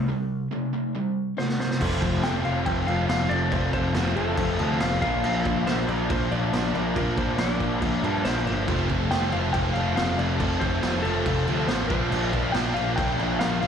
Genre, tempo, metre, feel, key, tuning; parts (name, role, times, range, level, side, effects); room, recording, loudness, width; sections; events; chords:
classic rock; 140 BPM; 4/4; straight; F major; A4 = 442 Hz
crunchy overdriven guitar; riff; 0.0-13.7 s; F2 to D4; -29 LUFS; right 11 dB; slapback echo
sludgy distorted guitar; riff; 0.0-13.7 s; F2 to F4; -30 LUFS; left 12 dB; overdrive, slapback echo
fuzz picked electric bass; bass; 0.0-13.7 s; F1 to G2; -28 LUFS; left 1 dB; overdrive
clean lap steel guitar; melody; 1.4-13.7 s; A4 to G5; -30 LUFS; left 3 dB; slapback echo
raw garage drum kit; drums; 1.4-13.7 s; crash cymbal, kick drum, snare drum; -28 LUFS; equal
warm grand piano; accompaniment; 1.8-13.7 s; F4 to F5; -37 LUFS; right 3 dB
distorted electric guitar; riff; 8.7-13.7 s; F2 to D4; -33 LUFS; equal; overdrive
light reverb; live gig heard through the venue's PA, club reverb; -22 LUFS; side -7 dB against mid
0.0-1.8 A section; 1.8-13.7 B section
break 0.1-1.8; drum fill 1.4-1.8
0.0 C5; 1.8 F; 5.0 Bb; 8.7 F; 11.9 Bb